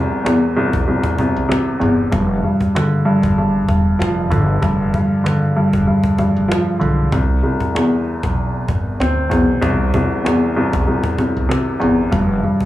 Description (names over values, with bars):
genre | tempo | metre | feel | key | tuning
hip hop, boom-bap hip-hop | 96 BPM | 4/4 | swing 57% on 16ths | C major | A4 = 440 Hz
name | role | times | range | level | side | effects
warm upright piano | accompaniment | 0.0-12.7 s | C2 to C4 | -15 LUFS | equal | cassette tape, high-pass filter, low-pass filter
cajon | drums | 0.1-12.7 s | none | -23 LUFS | equal | none
upright bass | bass | 0.7-12.4 s | E1 to D2 | -20 LUFS | equal | none
room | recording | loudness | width
moderate small room reverb, RT60 0.6 s | small room reverb | -14 LUFS | side -14 dB against mid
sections
0.0-12.7 A section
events
break 0.0-7.1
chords
0.0 C; 2.1 Fsus2; 7.1 Cmaj7; 12.1 Fsus2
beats
0.25 0.87 1.50 | 2.12 2.75 3.37 4.00 | 4.62 5.25 5.87 6.50 | 7.12 7.75 8.37 9.00 | 9.62 10.25 10.87 11.50 | 12.12